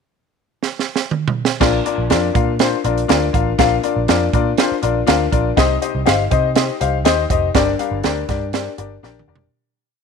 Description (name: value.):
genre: uptempo 1960s-style soul.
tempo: 121 BPM.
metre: 4/4.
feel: straight.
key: Bb major.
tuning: A4 = 441 Hz.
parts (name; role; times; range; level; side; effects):
compact cocktail drum kit; drums; 0.6-9.5 s; crash cymbal, hi-hat, kick drum, snare drum, toms; -18 LUFS; right 7 dB; none.
clear upright piano; accompaniment; 1.6-9.4 s; G2 to F5; -18 LUFS; left 10 dB; none.
vintage muted picked electric bass; bass; 1.6-9.5 s; F1 to C3; -22 LUFS; right 2 dB; none.
room: light reverb, small room ambience.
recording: 1960s-style stereo with parts hard left and right.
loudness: -15 LUFS.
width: side -6 dB against mid.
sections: 0.0-1.6 pickup bar; 1.6-9.5 verse.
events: drum fill 0.6-1.6, 9.0-9.5; fade-out 7.5-9.5.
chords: 0.0 N.C.; 1.6 Bb; 5.6 Cm; 7.5 Gm.